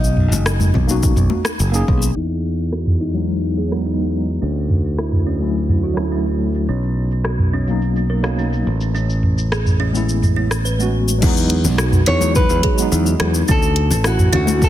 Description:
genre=sunset chillout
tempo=106 BPM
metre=4/4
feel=straight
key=E major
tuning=A4 = 440 Hz
part: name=nylon-string guitar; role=melody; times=0.0-1.6, 12.1-14.7 s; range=D#4 to C#5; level=-22 LUFS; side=equal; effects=digital delay
part: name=modern bright fingered electric bass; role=bass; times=0.0-14.7 s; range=F#1 to E2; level=-19 LUFS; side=equal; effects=none
part: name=smooth R&B drum kit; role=drums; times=0.0-14.7 s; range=crash cymbal, hi-hat, rim click, shaker, toms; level=-20 LUFS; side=equal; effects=studio reverb, soft clipping on snare
part: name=congas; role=percussion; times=0.3-1.4, 11.6-14.6 s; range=none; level=-24 LUFS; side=left 3 dB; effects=none
part: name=electronic kick drum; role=drums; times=0.8-2.0, 11.2-14.7 s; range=none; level=-18 LUFS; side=equal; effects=studio reverb
part: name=tine electric piano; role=accompaniment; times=0.9-14.7 s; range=F#3 to G#4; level=-23 LUFS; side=moving between left 7 dB and right 3 dB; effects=medium tremolo, auto-pan, digital delay
part: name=kalimba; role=arpeggios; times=2.2-14.6 s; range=C#4 to B4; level=-27 LUFS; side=right 1 dB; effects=low-pass filter, digital delay
room=light reverb, digital ambience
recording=dense, heavily limited modern master, low-pass filter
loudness=-15 LUFS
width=side -12 dB against mid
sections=0.0-2.2 A section; 2.2-11.2 B section; 11.2-14.7 C section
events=filter sweep on kalimba 2.2-11.2; filter sweep 2.2-11.2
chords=0.0 Bmaj9; 2.2 Emaj9; 4.4 Dmaj9; 6.7 Bmaj9; 8.7 Amaj9; 11.2 Emaj9; 13.5 Dmaj9

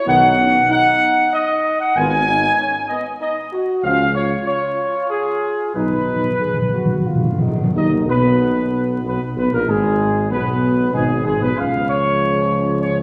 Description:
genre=classical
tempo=95 BPM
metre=3/4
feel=straight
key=B lydian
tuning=A4 = 442 Hz
part: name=mellow trumpet section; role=melody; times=0.0-13.0 s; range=G#4 to G#5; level=-20 LUFS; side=equal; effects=none
part: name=warm French horn section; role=sustained chords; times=0.1-13.0 s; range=G#3 to G#4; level=-27 LUFS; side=equal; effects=none
part: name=warm trombone section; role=sustained chords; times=0.1-13.0 s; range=G#2 to D#4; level=-27 LUFS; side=equal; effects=none
part: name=warm tuba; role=bass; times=0.1-13.0 s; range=G#1 to D#2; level=-24 LUFS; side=equal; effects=none
part: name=timpani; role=percussion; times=5.8-7.7 s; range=B2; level=-23 LUFS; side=equal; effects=none
room=wet scoring stage reverb, RT60 1.9 s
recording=heard from further back in the room, vinyl crackle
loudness=-18 LUFS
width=mono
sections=0.0-7.7 A section; 7.7-13.0 A section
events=timpani fill 5.8-7.7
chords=0.1 B; 1.9 G#m; 3.8 C#; 5.8 B; 9.7 G#m; 11.6 C#

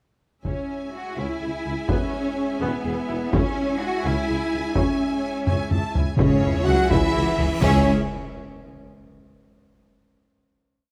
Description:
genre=cinematic, epic orchestral film score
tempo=84 BPM (dotted quarters)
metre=6/8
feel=straight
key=C# minor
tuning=A4 = 441 Hz
part: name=warm studio viola section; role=accompaniment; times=0.4-7.9 s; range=B3 to E5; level=-36 LUFS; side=equal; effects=none
part: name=mellow French horn section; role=sustained chords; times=0.4-7.8 s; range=B3 to F#4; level=-31 LUFS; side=equal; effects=none
part: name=warm symphonic string section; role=sustained chords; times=0.4-7.9 s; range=G#3 to E5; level=-34 LUFS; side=equal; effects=none
part: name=mellow tuba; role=bass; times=0.4-7.8 s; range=E1 to C#2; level=-33 LUFS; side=equal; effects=none
part: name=rich symphonic cello section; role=bass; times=0.4-7.9 s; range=C#3 to F#4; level=-30 LUFS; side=equal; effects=none
part: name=solo taiko drums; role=drums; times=0.4-7.7 s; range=none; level=-27 LUFS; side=equal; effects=none
part: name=warm symphonic violin section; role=melody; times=0.5-7.9 s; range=C#5 to A5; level=-35 LUFS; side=equal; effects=none
part: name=warm symphonic violin section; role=second line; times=0.5-7.9 s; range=C#4 to G#5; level=-38 LUFS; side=equal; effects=none
part: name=warm symphonic double bass section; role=bass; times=0.5-7.9 s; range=C#2 to E2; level=-31 LUFS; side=equal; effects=none
part: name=timpani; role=percussion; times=6.2-7.8 s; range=C#3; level=-30 LUFS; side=equal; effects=none
part: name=cymbal swell, sub drop and impact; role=sound effects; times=6.3-9.1 s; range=none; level=-32 LUFS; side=equal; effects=none
room=moderate scoring stage reverb, RT60 2.0 s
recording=none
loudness=-23 LUFS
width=mono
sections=0.5-6.2 theme; 6.2-7.6 outro; 7.6-9.1 final chord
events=drum fill 5.5-6.2; impact 6.2-7.6, 7.6-9.1; cymbal swell 6.3-7.6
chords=0.5 C#m; 1.9 E; 3.3 C#m

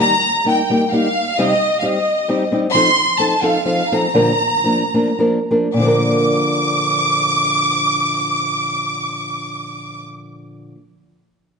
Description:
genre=mexican folk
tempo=101-133 BPM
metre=3/4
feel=swing 53% on 8ths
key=Bb major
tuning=A4 = 439 Hz
part: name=clear studio violin section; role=melody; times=0.0-10.0 s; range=Eb5 to D6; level=-17 LUFS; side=equal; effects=none
part: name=nylon-string guitar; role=accompaniment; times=0.0-10.8 s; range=Bb2 to Bb4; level=-18 LUFS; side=equal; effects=none
room=wet recital hall reverb, RT60 1.6 s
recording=nothing above 10.5 kHz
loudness=-14 LUFS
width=side -5 dB against mid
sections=0.0-5.8 A section; 5.8-9.3 B section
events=slowing down 2.7-5.8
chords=0.0 Eb; 1.4 Cm; 2.7 F7; 4.1 Bb

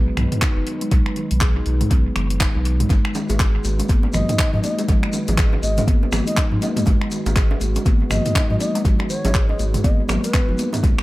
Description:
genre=afro house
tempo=121 BPM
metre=4/4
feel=swing 60% on 16ths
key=G# minor pentatonic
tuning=A4 = 440 Hz
part: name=dark analog pad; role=sustained chords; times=0.0-11.0 s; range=F#3 to B4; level=-31 LUFS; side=left 1 dB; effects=chorus, sidechain pumping
part: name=kalimba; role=arpeggios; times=0.0-11.0 s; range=D#3 to G#4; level=-26 LUFS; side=equal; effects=vintage 12-bit sampler grit, sidechain pumping, tape echo
part: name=warm sub bass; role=bass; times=0.0-10.9 s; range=F#1 to G#2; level=-22 LUFS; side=equal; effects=sidechain pumping
part: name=deep house drum kit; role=drums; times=0.2-11.0 s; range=finger snaps, handclaps, hi-hat, toms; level=-26 LUFS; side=equal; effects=overdrive, dub echo
part: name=electronic kick drum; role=drums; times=0.4-11.0 s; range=none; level=-18 LUFS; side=equal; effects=none
part: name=bongos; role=percussion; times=2.9-10.9 s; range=none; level=-32 LUFS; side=right 3 dB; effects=dub echo
part: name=congas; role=percussion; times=2.9-11.0 s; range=none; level=-28 LUFS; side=left 2 dB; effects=dub echo
part: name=shekere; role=percussion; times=2.9-11.0 s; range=none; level=-36 LUFS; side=left 2 dB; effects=none
part: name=breathy bass bansuri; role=melody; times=4.1-10.7 s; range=B4 to D#5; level=-28 LUFS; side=equal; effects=tape echo
room=studio reverb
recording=echo-heavy mix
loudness=-17 LUFS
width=side -18 dB against mid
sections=0.0-11.0 A section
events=none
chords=0.0 G#m7

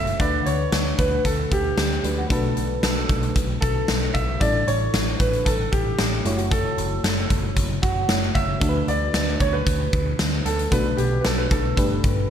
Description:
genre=1980s-style pop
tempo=114 BPM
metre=4/4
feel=straight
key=unclear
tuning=A4 = 443 Hz
part: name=clear grand piano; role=melody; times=0.0-12.3 s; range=F#4 to E5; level=-26 LUFS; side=right 1 dB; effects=lush chorus, digital delay
part: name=FM electric piano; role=accompaniment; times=0.0-12.3 s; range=G2 to F#5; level=-28 LUFS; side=left 1 dB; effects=chorus
part: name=overdriven picked electric bass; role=bass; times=0.0-12.2 s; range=F#1 to D2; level=-26 LUFS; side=equal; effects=none
part: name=huge arena drum kit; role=drums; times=0.1-12.2 s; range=hi-hat, kick drum, snare drum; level=-23 LUFS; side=equal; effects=gated reverb
room=moderate lush hall reverb, RT60 1.8 s, studio reverb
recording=bright 1980s-style digital production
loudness=-19 LUFS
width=side -9 dB against mid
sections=0.0-12.3 A section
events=FM electric piano fill 12.0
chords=0.2 D6; 2.3 Bm7; 4.4 A7sus4; 6.2 F#m7; 8.6 D6; 10.7 Bm7; 11.8 Gadd9

